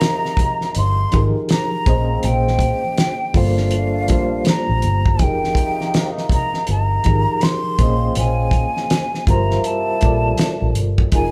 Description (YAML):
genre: R&B, neo-soul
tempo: 81 BPM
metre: 4/4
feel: swing 62% on 16ths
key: unclear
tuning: A4 = 439 Hz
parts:
  - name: breathy hollow jazz flute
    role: melody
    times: 0.0-11.3 s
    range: F5 to C6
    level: -25 LUFS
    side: equal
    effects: none
  - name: reed electric piano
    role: accompaniment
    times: 0.0-11.3 s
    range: F3 to Eb5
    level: -26 LUFS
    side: equal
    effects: fast tremolo
  - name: muted trombone section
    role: stabs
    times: 0.0-11.3 s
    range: Ab2 to F4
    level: -30 LUFS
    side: equal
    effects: tape echo
  - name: cloth-damped thuddy drum kit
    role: drums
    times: 0.0-11.3 s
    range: hi-hat, kick drum, snare drum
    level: -21 LUFS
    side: equal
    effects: none
  - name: congas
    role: percussion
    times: 0.4-11.3 s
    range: none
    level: -34 LUFS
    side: equal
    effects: none
  - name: vintage muted fingered electric bass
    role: bass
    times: 0.8-11.3 s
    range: F1 to Bb1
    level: -22 LUFS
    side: equal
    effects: none
room: light reverb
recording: band playing live in one room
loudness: -18 LUFS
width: mono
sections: 0.0-11.3 A section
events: none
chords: 0.0 Fm11; 1.9 Bbm11; 3.3 Gm11; 5.2 Fm11; 7.8 Bbm11; 9.3 Gm11